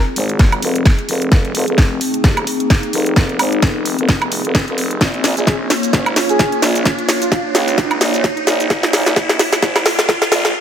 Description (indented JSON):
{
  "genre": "bass house",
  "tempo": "130 BPM",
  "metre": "4/4",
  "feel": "swing 57% on 16ths",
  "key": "F minor",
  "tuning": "A4 = 441 Hz",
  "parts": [
    { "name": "dark analog pad", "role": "sustained chords", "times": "0.0-10.5 s", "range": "Bb3 to Db5", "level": "-22 LUFS", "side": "equal", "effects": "chorus, phaser, sidechain pumping" },
    { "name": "riser", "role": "sound effects", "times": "0.8-10.5 s", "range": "none", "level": "-24 LUFS", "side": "right 1 dB", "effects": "none" },
    { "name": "growling FM bass", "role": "bass", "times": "0.2-10.5 s", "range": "Eb1 to Db2", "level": "-21 LUFS", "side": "equal", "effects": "tube saturation, sidechain pumping, high-pass filter" },
    { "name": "garage drum kit", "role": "drums", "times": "0.2-10.5 s", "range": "hi-hat, shaker, snare drum, woodblock", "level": "-17 LUFS", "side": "equal", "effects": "none" },
    { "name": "electronic kick drum", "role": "drums", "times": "0.4-10.2 s", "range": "none", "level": "-13 LUFS", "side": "equal", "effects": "none" },
    { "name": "breathy flute-like synth lead", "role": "melody", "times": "5.4-7.4 s", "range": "F4 to Ab4", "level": "-23 LUFS", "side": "equal", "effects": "analog chorus, tape echo" }
  ],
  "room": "light reverb, digital ambience",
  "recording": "high-pass filter",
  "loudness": "-13 LUFS",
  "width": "side -9 dB against mid",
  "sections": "0.0-10.6 A section",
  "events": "build-up 0.0-10.6; drum fill 0.0-10.5; filter sweep 0.0-10.6; riser 0.8-10.5",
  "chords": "0.0 Fm; 5.0 Bbm",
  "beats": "0.39 0.85 | 1.32 1.78 2.24 2.70 | 3.16 3.62 4.09 4.55 | 5.01 5.47 5.93 6.39 | 6.86 7.32 7.78 8.24 | 8.70 9.16 9.62 10.09 | 10.55"
}